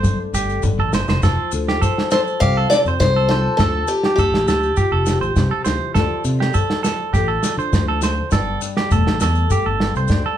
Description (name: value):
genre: highlife guitar band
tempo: 101 BPM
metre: 4/4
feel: straight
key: F major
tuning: A4 = 440 Hz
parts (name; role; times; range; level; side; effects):
- nylon-string guitar; accompaniment; 0.0-10.4 s; G2 to D5; -27 LUFS; left 7 dB; none
- clean electric guitar; arpeggios; 0.0-10.4 s; G4 to C5; -23 LUFS; right 6 dB; none
- fingered electric bass; bass; 0.0-10.2 s; E1 to D3; -21 LUFS; equal; none
- warm soul drum kit; drums; 0.0-10.2 s; kick drum, snare drum, toms; -19 LUFS; equal; none
- maracas; percussion; 0.0-10.2 s; none; -33 LUFS; left 7 dB; none
- picked acoustic archtop guitar; melody; 2.1-5.3 s; G4 to F5; -19 LUFS; left 2 dB; none
room: moderate studio reverb, RT60 0.5 s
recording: band playing live in one room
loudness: -16 LUFS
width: side -10 dB against mid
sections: 0.0-1.2 A section; 1.2-10.4 B section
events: drum fill 0.0-1.2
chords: 0.0 Fadd9; 6.0 Dm; 8.3 Gsus2